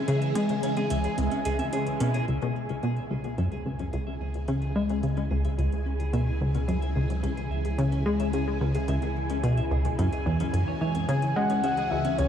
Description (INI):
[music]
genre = ambient, sequencer-driven space music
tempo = 109 BPM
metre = 4/4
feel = straight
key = C# minor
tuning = A4 = 440 Hz
[part]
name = phased string machine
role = sustained chords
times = 0.0-12.3 s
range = C#3 to G#4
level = -34 LUFS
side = equal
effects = ensemble chorus, phaser, shimmer reverb
[part]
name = bubbling stepped-filter texture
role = texture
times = 0.0-12.3 s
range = G#5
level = -38 LUFS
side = right 3 dB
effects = chorus, built-in reverb, shimmer reverb
[part]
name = clean electric guitar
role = arpeggios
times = 0.1-12.3 s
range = C#4 to G#5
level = -36 LUFS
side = left 1 dB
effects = auto-pan, shimmer reverb, ping-pong delay
[part]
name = plucky analog bass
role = riff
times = 0.1-12.3 s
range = C#2 to G#3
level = -27 LUFS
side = left 1 dB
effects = lush chorus, ping-pong delay
[part]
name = electronic hi-hat and congas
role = percussion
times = 0.1-12.3 s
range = none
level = -41 LUFS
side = right 1 dB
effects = overdrive, ping-pong delay
[part]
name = warm sub bass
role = bass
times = 2.3-12.3 s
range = C#2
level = -32 LUFS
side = right 1 dB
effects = none
[part]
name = soft octave-layered synth lead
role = melody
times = 11.1-12.3 s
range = C#5 to G#5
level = -27 LUFS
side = left 1 dB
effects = chorus, shimmer reverb, ping-pong delay
[sound]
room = wet cathedral reverb, RT60 6.0 s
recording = in a vast, echoing space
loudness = -25 LUFS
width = side -9 dB against mid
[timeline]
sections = 0.0-2.3 A section; 2.3-12.3 B section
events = filter sweep on analog synth bass 0.0-2.3; fade-in on clean electric guitar 2.3-12.3; fade-in on string machine 2.3-12.3; fade-in on synth texture 2.3-12.3; fade-in on drum 2.3-12.3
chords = 0.0 C#m